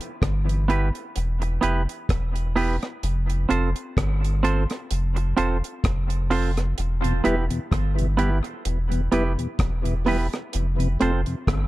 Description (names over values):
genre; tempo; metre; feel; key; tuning
dub reggae; 64 BPM; 4/4; swing 56% on 16ths; E phrygian; A4 = 440 Hz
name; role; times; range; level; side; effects
deep reggae drum kit; drums; 0.0-11.7 s; hi-hat, kick drum, rim click; -27 LUFS; equal; none
warm sub bass; bass; 0.2-11.7 s; E1 to G1; -23 LUFS; equal; none
semi-hollow electric guitar; accompaniment; 0.7-11.2 s; B3 to C5; -27 LUFS; right 4 dB; tape echo
mellow tonewheel organ; accompaniment; 7.0-11.4 s; E2 to F4; -29 LUFS; left 1 dB; slow rotary speaker, tape echo
room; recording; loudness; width
small room ambience; dark, warm production; -21 LUFS; side -17 dB against mid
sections
0.0-11.7 A section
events
break 0.0-6.8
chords
0.0 Em; 3.0 F; 6.8 Em; 10.5 F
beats
0.21 1.15 2.09 | 3.03 3.97 4.91 5.84 | 6.78 7.72 8.66 9.60 | 10.53 11.47